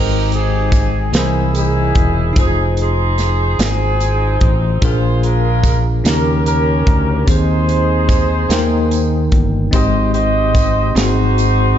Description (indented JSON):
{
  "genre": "slow gospel",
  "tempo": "49 BPM (dotted quarters)",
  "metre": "6/8",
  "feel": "straight",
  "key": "Ab major",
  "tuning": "A4 = 440 Hz",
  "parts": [
    { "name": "mellow horn section", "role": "melody", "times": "0.0-11.8 s", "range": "C4 to Eb5", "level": "-19 LUFS", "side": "right 1 dB", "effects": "none" },
    { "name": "bell-like tine electric piano", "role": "accompaniment", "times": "0.0-11.8 s", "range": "Ab2 to G5", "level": "-19 LUFS", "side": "left 2 dB", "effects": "fast stereo tremolo" },
    { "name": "fingered electric bass", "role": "bass", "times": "0.0-11.7 s", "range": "E1 to Eb2", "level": "-16 LUFS", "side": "equal", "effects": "none" },
    { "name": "modern studio drum kit", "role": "drums", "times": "0.3-11.6 s", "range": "hi-hat, kick drum, snare drum", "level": "-17 LUFS", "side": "equal", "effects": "none" },
    { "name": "tambourine", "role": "percussion", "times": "0.7-11.8 s", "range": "none", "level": "-32 LUFS", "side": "right 8 dB", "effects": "none" }
  ],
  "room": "light reverb",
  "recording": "dark, warm production, nothing above 7.7 kHz",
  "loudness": "-12 LUFS",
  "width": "side -10 dB against mid",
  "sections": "0.0-11.8 A section",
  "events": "none",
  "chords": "0.0 Abmaj7; 1.1 C7alt; 2.4 Fm7; 4.8 Bb7; 6.0 Eb7; 7.3 Ab/Eb; 8.5 Eb; 9.7 Abmaj7; 11.0 Ab7"
}